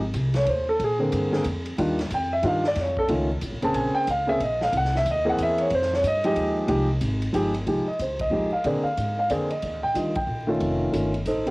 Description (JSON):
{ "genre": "jazz piano trio", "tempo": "183 BPM", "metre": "3/4", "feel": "swing 63% on 8ths", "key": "F minor", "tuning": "A4 = 442 Hz", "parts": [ { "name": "upright bass", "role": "bass", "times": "0.0-11.5 s", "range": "Eb1 to Bb2", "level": "-28 LUFS", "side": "equal", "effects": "none" }, { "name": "swinging big-band drum kit", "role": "drums", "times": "0.1-11.5 s", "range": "hi-hat, kick drum, ride cymbal, snare drum", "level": "-36 LUFS", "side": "equal", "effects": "none" }, { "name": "warm concert grand piano", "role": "melody", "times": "0.4-11.5 s", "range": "Db3 to A5", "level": "-23 LUFS", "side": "equal", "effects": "tape echo" } ], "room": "light reverb", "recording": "home recording on cassette, vinyl crackle", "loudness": "-22 LUFS", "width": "side -24 dB against mid", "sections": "0.0-7.7 A section; 7.7-11.5 B section", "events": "grand piano solo 0.0-7.7; band accent 8.1, 10.1", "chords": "0.0 Fm7 (rootless); 0.8 Bb9; 1.8 Ebmaj9; 2.8 Faug; 3.7 Bbm9; 4.7 C7alt; 5.7 Fm9; 8.6 Bb9; 9.6 Ebmaj9; 10.6 F7b13" }